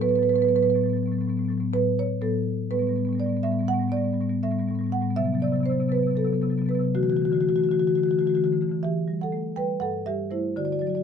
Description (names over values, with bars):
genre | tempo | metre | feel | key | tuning
classical, contemporary piece for solo marimba | 243 BPM (eighths) | 7/8 | rubato | unclear | A4 = 440 Hz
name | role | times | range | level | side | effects
marimba with soft mallets | solo | 0.0-11.0 s | G2 to G5 | -22 LUFS | equal | none
room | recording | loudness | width
light reverb | minimal, uncompressed stereo recording | -22 LUFS | side -7 dB against mid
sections
0.0-8.8 A section; 8.8-11.0 B section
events
none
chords
0.0 F#madd11/A; 2.7 Gadd9/A; 5.2 Cmaj9#11; 6.9 Dadd9; 8.8 Emadd11; 9.8 Gsus2